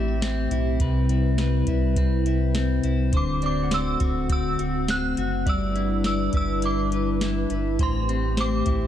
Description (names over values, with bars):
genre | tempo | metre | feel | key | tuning
dream pop | 103 BPM | 4/4 | straight | C lydian | A4 = 436 Hz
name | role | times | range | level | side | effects
warbly tape-like pad | sustained chords | 0.0-8.9 s | C3 to B4 | -28 LUFS | left 1 dB | chorus, built-in reverb
clean electric guitar | arpeggios | 0.0-8.9 s | A2 to D5 | -27 LUFS | left 4 dB | lush chorus, ping-pong delay
sub bass with octave | bass | 0.0-8.9 s | D1 to C2 | -26 LUFS | right 1 dB | none
soft vintage rhythm box | drums | 0.2-8.8 s | hi-hat, kick drum, snare drum | -27 LUFS | equal | none
synth chime | melody | 3.2-8.9 s | C6 to F#6 | -29 LUFS | right 2 dB | ensemble chorus, tremolo, ping-pong delay
concert harp | texture | 3.4-7.2 s | D5 to F#5 | -39 LUFS | right 4 dB | ping-pong delay
room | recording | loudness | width
moderate scoring stage reverb, RT60 2.0 s | dark, warm production | -21 LUFS | side -10 dB against mid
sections
0.0-8.9 A section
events
none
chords
0.0 Am7; 0.8 Cmaj7; 3.1 D7; 5.5 G6; 7.8 Am7